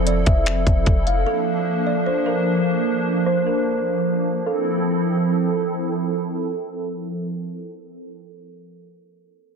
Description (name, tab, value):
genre	hip hop, atmospheric cloud-rap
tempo	150 BPM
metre	4/4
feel	half-time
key	F major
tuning	A4 = 440 Hz
part	hollow soft pad	sustained chords	0.0-8.0 s	F3 to A4	-22 LUFS	right 1 dB	ensemble chorus, sidechain pumping
part	clean 808-style bass	bass	0.0-1.3 s	F1	-21 LUFS	equal	none
part	kalimba	melody	0.1-5.6 s	A4 to F5	-25 LUFS	equal	ping-pong delay
part	trap drum kit	drums	0.1-1.2 s	finger snaps, hi-hat, kick drum	-18 LUFS	equal	soft clipping on snare
room	light reverb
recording	dense, heavily limited modern master, low-pass filter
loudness	-19 LUFS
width	side -6 dB against mid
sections	0.0-4.5 A section; 4.5-7.7 B section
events	filter sweep 0.0-4.5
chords	0.0 Fmaj7; 1.3 Bb; 4.5 Fmaj7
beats	0.07 0.47 0.87 | 1.27 1.67 2.07 2.47 | 2.87 3.27 3.67 4.07 | 4.47 4.87 5.27 5.67 | 6.07 6.47 6.87 7.27